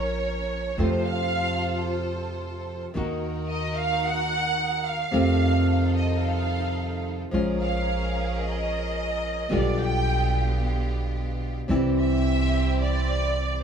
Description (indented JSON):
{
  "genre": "tango",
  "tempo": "110 BPM",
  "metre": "4/4",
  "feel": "rubato",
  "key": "Bb harmonic minor",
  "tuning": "A4 = 441 Hz",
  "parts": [
    { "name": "rich symphonic violin section", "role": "second line", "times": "0.0-13.6 s", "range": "C5 to G5", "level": "-28 LUFS", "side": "right 1 dB", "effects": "none" },
    { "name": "flamenco guitar", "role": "accompaniment", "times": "0.0-13.6 s", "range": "B2 to Gb4", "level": "-28 LUFS", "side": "left 1 dB", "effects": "none" },
    { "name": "clear studio string section", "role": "stabs", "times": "0.0-13.6 s", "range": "B3 to Db5", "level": "-34 LUFS", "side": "right 2 dB", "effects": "none" },
    { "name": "upright bass", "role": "bass", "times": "0.0-13.6 s", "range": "Bb1 to F2", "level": "-27 LUFS", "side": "right 1 dB", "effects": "none" }
  ],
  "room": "light reverb",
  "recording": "small room ambience",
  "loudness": "-23 LUFS",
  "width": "side -7 dB against mid",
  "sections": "0.0-13.6 A section",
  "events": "violin section solo 0.0-13.6",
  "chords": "0.0 Bbm; 0.8 F; 3.0 Ebm; 5.1 F7; 7.3 Bbm7; 9.5 G7/B; 11.7 C",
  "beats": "0.24 | 0.79 1.33 1.87 2.41 | 2.96 3.50 4.04 4.58 | 5.13 5.68 6.23 6.78 | 7.33 7.88 8.43 8.97 | 9.52 10.06 10.61 11.15 | 11.70 12.24 12.79 13.34"
}